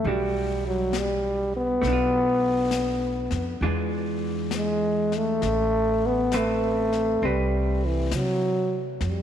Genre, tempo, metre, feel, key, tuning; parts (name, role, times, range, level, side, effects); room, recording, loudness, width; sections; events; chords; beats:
jazz; 67 BPM; 4/4; swing 66% on 8ths; A4 = 443 Hz
growling trombone; melody; 0.0-9.2 s; E3 to B3; -24 LUFS; equal; tape echo
vintage hollow-body jazz guitar; accompaniment; 0.0-9.0 s; E3 to B4; -31 LUFS; equal
upright bass; bass; 0.0-9.2 s; A1 to C3; -29 LUFS; right 1 dB
jazz brush drum kit; drums; 0.0-9.2 s; brushed snare drum, hi-hat, snare drum; -37 LUFS; left 8 dB
moderate echo chamber reverb, RT60 2.3 s; 1960s-style stereo; -22 LUFS; side -9 dB against mid
0.0-9.2 A section
0.0 Em9; 1.8 Bm7b5; 3.6 E7b9; 5.4 Amadd9
0.05 0.94 | 1.83 2.72 3.61 4.51 | 5.41 6.31 7.21 8.11 | 9.00